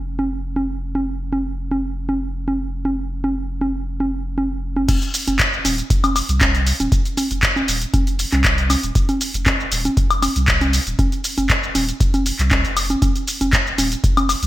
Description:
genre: acid house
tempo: 118 BPM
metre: 4/4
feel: straight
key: unclear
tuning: A4 = 440 Hz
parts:
  - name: warm sub bass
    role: bass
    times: 0.0-14.5 s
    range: Eb1 to C2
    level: -24 LUFS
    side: equal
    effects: sidechain pumping
  - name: punchy analog drum machine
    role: drums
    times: 0.2-14.5 s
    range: congas, crash cymbal, handclaps, hi-hat, shaker, woodblock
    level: -19 LUFS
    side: equal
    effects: gated reverb
  - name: electronic kick drum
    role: drums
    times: 4.9-14.1 s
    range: none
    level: -19 LUFS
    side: equal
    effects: none
room: light reverb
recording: bright 1980s-style digital production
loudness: -17 LUFS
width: side -15 dB against mid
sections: 0.0-4.9 A section; 4.9-14.5 B section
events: drop 4.9-14.5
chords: none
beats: 0.31 | 0.82 1.33 1.83 2.34 | 2.85 3.36 3.87 4.38 | 4.88 5.39 5.90 6.41 | 6.92 7.43 7.94 8.44 | 8.95 9.46 9.97 10.48 | 10.99 11.49 12.00 12.51 | 13.02 13.53 14.04

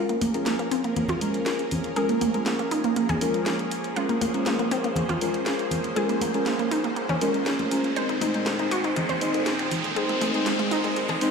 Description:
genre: progressive house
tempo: 120 BPM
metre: 4/4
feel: straight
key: Bb minor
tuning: A4 = 438 Hz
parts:
  - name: supersaw pad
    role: sustained chords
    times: 0.0-11.3 s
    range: Bb2 to C5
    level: -30 LUFS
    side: right 1 dB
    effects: phaser
  - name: analog pluck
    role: arpeggios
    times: 0.0-11.3 s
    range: Ab3 to C5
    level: -28 LUFS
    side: right 1 dB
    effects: chorus, ping-pong delay
  - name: deep mellow chord stab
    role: stabs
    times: 0.0-11.3 s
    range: Ab3 to C5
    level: -28 LUFS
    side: equal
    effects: chorus, ping-pong delay
  - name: riser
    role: sound effects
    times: 2.2-11.3 s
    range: none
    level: -34 LUFS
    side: equal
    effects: none
  - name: house drum kit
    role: drums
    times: 0.1-11.3 s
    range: finger snaps, hi-hat, snare drum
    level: -32 LUFS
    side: equal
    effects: none
  - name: congas and bongos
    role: percussion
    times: 0.2-11.2 s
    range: none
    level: -32 LUFS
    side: left 1 dB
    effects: none
room: moderate lush hall reverb, RT60 1.7 s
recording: played on a big sound system in a bare room, stone room reverb, high-pass filter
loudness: -22 LUFS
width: side -5 dB against mid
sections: 0.0-11.3 A section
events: build-up 0.0-11.3; filter sweep on synth arpeggio sound 0.0-11.3; filter sweep 0.0-11.3; riser 2.2-11.3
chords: 0.0 Bbm7; 8.0 Ab/Bb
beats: 0.46 0.96 1.46 | 1.96 2.46 2.96 3.46 | 3.96 4.46 4.96 5.46 | 5.96 6.46 6.96 7.46 | 7.96 8.46 8.96 9.46 | 9.96 10.46 10.96

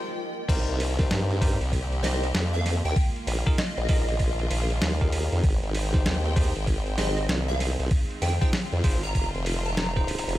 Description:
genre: glitch hop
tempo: 97 BPM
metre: 4/4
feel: swing 63% on 16ths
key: C minor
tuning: A4 = 436 Hz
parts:
  - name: clear studio string section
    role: sustained chords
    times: 0.5-10.4 s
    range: Eb3 to G5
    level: -36 LUFS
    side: equal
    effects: sidechain pumping
  - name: bell-like tine electric piano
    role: stabs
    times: 0.5-10.4 s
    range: Eb4 to C5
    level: -35 LUFS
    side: equal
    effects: fast stereo tremolo, sidechain pumping, ping-pong delay
  - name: formant-sweep wobble bass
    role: bass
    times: 0.5-10.4 s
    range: F1 to G2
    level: -26 LUFS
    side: equal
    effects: chorus, tube saturation
  - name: boom bap sampler-style drum kit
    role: drums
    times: 0.5-10.4 s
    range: crash cymbal, hi-hat, snare drum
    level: -32 LUFS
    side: right 1 dB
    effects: none
  - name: electronic kick drum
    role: drums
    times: 0.5-10.1 s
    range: none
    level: -24 LUFS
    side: equal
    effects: none
  - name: plucky unison lead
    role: melody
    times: 2.0-10.4 s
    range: Eb5 to Bb5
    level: -34 LUFS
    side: equal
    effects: ensemble chorus, ping-pong delay
room: digital ambience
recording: none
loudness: -23 LUFS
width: side -15 dB against mid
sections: 0.5-10.4 A section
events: stop 0.0-0.5; drop 0.5-10.4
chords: 0.5 Cm7; 3.0 Bb7sus4; 5.4 Abmaj7; 7.9 Fm7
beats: | 0.49 1.11 1.73 2.34 | 2.96 3.58 4.20 4.82 | 5.44 6.06 6.67 7.29 | 7.91 8.53 9.15 9.77

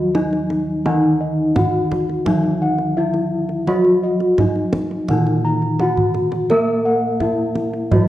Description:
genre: Javanese gamelan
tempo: 85 BPM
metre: 4/4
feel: straight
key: unclear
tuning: A4 = 440 Hz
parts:
  - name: gamelan-type bronze metallophone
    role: melody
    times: 0.0-8.1 s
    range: Eb4 to Bb4-30c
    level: -20 LUFS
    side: left 1 dB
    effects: none
  - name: gamelan-type bronze metallophone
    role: accompaniment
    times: 0.0-8.1 s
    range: Eb3 to Bb3-30c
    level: -22 LUFS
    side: equal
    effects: none
  - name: gamelan-type bossed gongs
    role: arpeggios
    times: 0.0-8.1 s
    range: Eb5 to Bb5-30c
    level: -26 LUFS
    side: left 2 dB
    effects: none
  - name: gamelan-type bossed gongs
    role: bass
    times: 0.0-8.1 s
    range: Bb2-30c to Bb4-30c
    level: -22 LUFS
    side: right 1 dB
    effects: none
  - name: kendang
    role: percussion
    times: 0.1-8.1 s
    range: none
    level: -23 LUFS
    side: right 2 dB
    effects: none
room: moderate recital hall reverb, RT60 1.5 s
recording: worn, warbling old tape, cassette tape, warbly pitch drift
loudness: -16 LUFS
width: side -14 dB against mid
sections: 0.0-8.1 A section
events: drum fill 6.0-6.5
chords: none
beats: 0.15 | 0.86 1.56 2.27 2.98 | 3.68 4.39 5.09 5.80 | 6.50 7.21 7.92

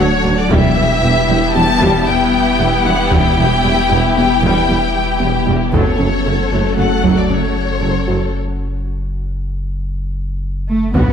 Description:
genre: cinematic, hybrid orchestral and electronic film score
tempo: 115 BPM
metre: 5/4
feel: straight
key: unclear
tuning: A4 = 440 Hz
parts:
  - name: warm symphonic violin section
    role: melody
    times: 0.0-11.1 s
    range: C#5 to A5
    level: -18 LUFS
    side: left 3 dB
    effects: none
  - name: dark symphonic violin section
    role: second line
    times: 0.0-11.1 s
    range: E4 to D5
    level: -20 LUFS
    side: left 3 dB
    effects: none
  - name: rich symphonic viola section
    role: accompaniment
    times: 0.0-11.1 s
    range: C#3 to F#4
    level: -22 LUFS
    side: equal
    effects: none
  - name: glassy FM pad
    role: sustained chords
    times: 0.0-11.1 s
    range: F#3 to B4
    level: -21 LUFS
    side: left 2 dB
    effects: ensemble chorus, built-in reverb
  - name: soft round pluck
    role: arpeggios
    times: 0.0-11.1 s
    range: E3 to F#4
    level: -24 LUFS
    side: right 2 dB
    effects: none
  - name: mellow tuba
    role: bass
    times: 0.0-11.0 s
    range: E1 to D2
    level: -23 LUFS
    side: right 3 dB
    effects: none
  - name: pure sine sub bass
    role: bass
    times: 0.0-11.1 s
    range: D1 to B1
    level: -22 LUFS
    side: equal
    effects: none
  - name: rich symphonic double bass section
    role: bass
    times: 0.0-11.0 s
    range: E1 to D2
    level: -22 LUFS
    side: right 4 dB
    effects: none
  - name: warm symphonic cello section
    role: bass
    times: 0.0-11.1 s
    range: D2 to B3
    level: -23 LUFS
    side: right 2 dB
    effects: none
  - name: taiko ensemble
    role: drums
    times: 0.5-11.1 s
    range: none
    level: -20 LUFS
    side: equal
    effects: none
  - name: sub drop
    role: sound effects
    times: 10.9-11.1 s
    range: none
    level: -17 LUFS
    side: equal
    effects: none
room: moderate scoring stage reverb, RT60 1.8 s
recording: none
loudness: -13 LUFS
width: side -7 dB against mid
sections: 0.0-10.9 A section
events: break 8.3-10.9; impact 10.9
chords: 0.0 D; 0.5 Em; 5.7 F#m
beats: | 0.51 1.03 1.55 2.07 2.60 | 3.12 3.64 4.16 4.68 5.21 | 5.73 6.25 6.77 7.29 7.81 | 8.34 8.86 9.38 9.90 10.42 | 10.94

